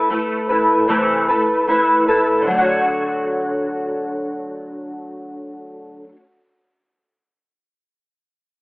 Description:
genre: indie pop.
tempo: 76 BPM.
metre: 4/4.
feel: straight.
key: D major.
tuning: A4 = 439 Hz.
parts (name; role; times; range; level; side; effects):
fingerpicked steel-string acoustic guitar; accompaniment; 0.0-6.2 s; C3 to C#5; -17 LUFS; equal; ensemble chorus, vibrato effect.
room: moderate spring reverb, RT60 1.8 s.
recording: telephone sound.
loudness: -15 LUFS.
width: side -26 dB against mid.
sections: 0.0-2.5 A section; 2.5-5.6 B section.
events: none.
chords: 0.0 Amadd9; 2.5 Dmaj7.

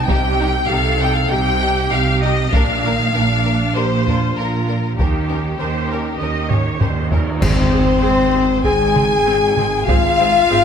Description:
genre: cinematic, epic orchestral film score.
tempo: 98 BPM.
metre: 4/4.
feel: straight.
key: Ab major from 7.4 s.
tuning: A4 = 437 Hz.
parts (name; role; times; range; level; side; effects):
rich symphonic violin section; melody; 0.0-10.6 s; G4 to Ab5; -22 LUFS; left 3 dB; none.
rich symphonic viola section; accompaniment; 0.0-10.6 s; Eb3 to Eb5; -25 LUFS; right 2 dB; none.
mellow French horn section; sustained chords; 0.0-10.6 s; Bb3 to Ab4; -21 LUFS; left 4 dB; none.
rich symphonic violin section; second line; 0.1-10.6 s; Db4 to Ab5; -23 LUFS; left 3 dB; none.
rich symphonic cello section; bass; 0.1-10.6 s; Ab2 to Eb3; -23 LUFS; right 3 dB; none.
rich symphonic double bass section; bass; 0.1-10.6 s; Ab1 to Eb2; -22 LUFS; right 4 dB; none.
taiko ensemble; drums; 0.1-10.5 s; none; -20 LUFS; right 1 dB; none.
cymbal swell, clash cymbals and concert bass drum; percussion; 5.0-8.6 s; none; -24 LUFS; right 1 dB; none.
timpani; percussion; 7.4-8.3 s; Ab2; -25 LUFS; right 1 dB; none.
room: moderate scoring stage reverb, RT60 2.0 s.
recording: none.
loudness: -14 LUFS.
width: side -7 dB against mid.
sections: 0.0-7.4 A section; 7.4-10.6 B section.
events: drum fill 6.5-7.4; band accent 7.4-8.0.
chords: 0.0 Cm; 2.5 Bb; 5.0 Eb7; 7.4 Ab.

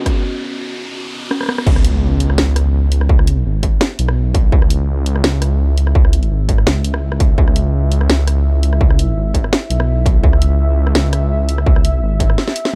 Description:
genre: half-time drum and bass.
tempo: 168 BPM.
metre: 4/4.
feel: swing 53% on 16ths, half-time.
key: C# minor.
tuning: A4 = 440 Hz.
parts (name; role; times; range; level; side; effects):
deep dark ambient pad; sustained chords; 0.0-12.8 s; C#4 to G#5; -31 LUFS; equal; chorus, built-in reverb, vintage 12-bit sampler grit, sidechain pumping.
kalimba; arpeggios; 0.0-1.6 s; B3 to C#4; -28 LUFS; equal; tape echo.
dark detuned saw bass; bass; 0.0-12.4 s; G#1 to C#2; -17 LUFS; equal; high-pass filter.
riser and impact; sound effects; 0.0-3.1 s; none; -27 LUFS; equal; none.
drum and bass drum kit; drums; 0.1-12.7 s; crash cymbal, hi-hat, rim click, snare drum; -21 LUFS; equal; small room ambience.
electronic kick drum; drums; 0.1-12.3 s; none; -16 LUFS; equal; distortion, small room ambience.
room: little or no reverb.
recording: dark, warm production.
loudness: -15 LUFS.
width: mono.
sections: 0.0-1.7 A section; 1.7-12.8 B section.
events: build-up 0.0-1.7; riser 0.0-1.7; filter sweep on kalimba 0.0-1.7; break 0.2-1.7, 12.4-12.8; drum fill 1.3-1.7, 12.4-12.8; drop 1.7-12.8; impact 1.7-3.1.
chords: 0.0 C#5; 1.7 C#m.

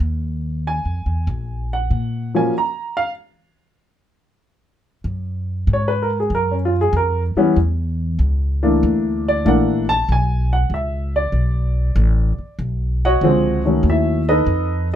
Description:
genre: jazz piano trio.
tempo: 95 BPM.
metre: 4/4.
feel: swing 67% on 8ths.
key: Eb minor.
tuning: A4 = 440 Hz.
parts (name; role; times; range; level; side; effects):
upright bass; bass; 0.0-15.0 s; A1 to Bb2; -19 LUFS; equal; none.
dark baby grand piano; melody; 0.7-14.9 s; D3 to Bb5; -18 LUFS; equal; none.
room: light reverb.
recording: minimal, uncompressed stereo recording.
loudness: -17 LUFS.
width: side -10 dB against mid.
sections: 0.0-5.1 A section; 5.1-15.0 B section.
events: stop 2.5-5.1; grand piano solo 5.1-15.0.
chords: 0.0 Eb5; 5.1 F#5; 7.6 C#m; 8.8 A#maj7#11; 10.1 Bm7; 12.6 B9.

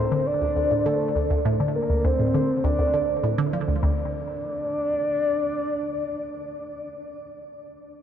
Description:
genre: ambient.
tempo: 101 BPM.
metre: 4/4.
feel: straight.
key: unclear.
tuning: A4 = 439 Hz.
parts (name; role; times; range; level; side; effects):
soft octave-layered synth lead; melody; 0.0-7.0 s; A4 to D5; -25 LUFS; equal; chorus, phaser, cassette tape, shimmer reverb, analog delay.
resonant blip pluck; riff; 0.0-4.1 s; D2 to F3; -25 LUFS; equal; phaser, analog delay.
room: wet huge ambient reverb, RT60 8.2 s.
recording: none.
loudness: -22 LUFS.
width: side -9 dB against mid.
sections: 0.0-3.8 A section; 3.8-6.2 B section.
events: filter sweep on synth arpeggio sound 0.0-3.8.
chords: 0.0 D5; 3.8 N.C..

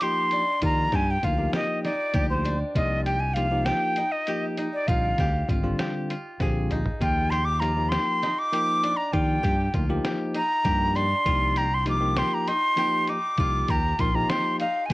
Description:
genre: progressive instrumental, band music in an uneven meter.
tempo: 198 BPM (eighths).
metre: 7/8.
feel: straight.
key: unclear.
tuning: A4 = 440 Hz.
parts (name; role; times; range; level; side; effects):
breathy bright jazz flute; melody; 0.0-14.9 s; C5 to D6; -25 LUFS; equal; cassette tape, tape echo.
bell-like tine electric piano; accompaniment; 0.0-14.9 s; D3 to Bb4; -30 LUFS; left 1 dB; wide subtle chorus, cassette tape.
koto; arpeggios; 0.0-14.9 s; D4 to Ab4; -34 LUFS; equal; cassette tape.
lo-fi sampler-style drum kit; drums; 0.0-14.9 s; hi-hat, kick drum, snare drum, toms; -28 LUFS; equal; cassette tape.
fingered electric bass; bass; 0.6-14.9 s; Ab1 to Eb3; -27 LUFS; equal; none.
room: little or no reverb.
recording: home recording on cassette.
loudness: -22 LUFS.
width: side -20 dB against mid.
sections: 0.0-14.9 A section.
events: flute solo 0.0-14.9; drum fill 6.4-7.0.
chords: 0.0 Ebmaj7; 2.8 Cm7; 4.9 Bb7; 7.0 Ebmaj7; 11.3 Cm7; 13.4 Cmadd9.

